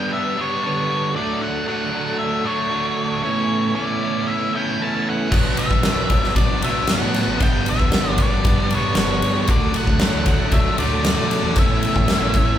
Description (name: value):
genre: classic rock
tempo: 115 BPM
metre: 4/4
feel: straight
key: unclear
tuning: A4 = 441 Hz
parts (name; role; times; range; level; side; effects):
- octave-fuzz lead guitar; melody; 0.0-12.6 s; C#5 to A5; -24 LUFS; left 1 dB; distortion
- tonewheel organ; sustained chords; 0.0-12.6 s; C#3 to B4; -30 LUFS; equal; overdrive, chorus vibrato, slow rotary speaker
- cranked stack guitar; riff; 0.0-12.6 s; G2 to E4; -22 LUFS; right 2 dB; overdrive
- deep dub fingered electric bass; bass; 5.3-12.6 s; G1 to B2; -26 LUFS; equal; none
- huge arena drum kit; drums; 5.3-12.5 s; crash cymbal, kick drum, ride cymbal, snare drum; -18 LUFS; equal; none
room: light reverb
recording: band playing live in one room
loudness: -17 LUFS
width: side -10 dB against mid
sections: 0.0-12.6 A section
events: none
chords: 0.0 G; 1.2 D; 3.2 Aadd9; 5.3 Bm; 7.4 G; 9.5 D; 11.6 Aadd9